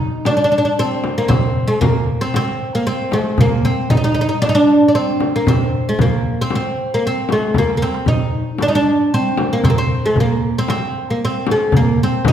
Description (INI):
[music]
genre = Arabic maqam ensemble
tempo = 115 BPM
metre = 4/4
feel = straight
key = unclear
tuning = A4 = 440 Hz
[part]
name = oud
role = melody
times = 0.0-12.3 s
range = Ab3+50c to Eb4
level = -16 LUFS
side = equal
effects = none
[part]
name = darbuka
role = percussion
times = 0.0-12.3 s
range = none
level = -20 LUFS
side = right 2 dB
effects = none
[part]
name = frame drum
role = percussion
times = 0.3-12.3 s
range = none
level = -21 LUFS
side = left 3 dB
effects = none
[sound]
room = wet recital hall reverb, RT60 1.4 s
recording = heard from further back in the room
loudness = -14 LUFS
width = side -9 dB against mid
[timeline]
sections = 0.0-12.3 A section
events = drum fill 7.5-8.1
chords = none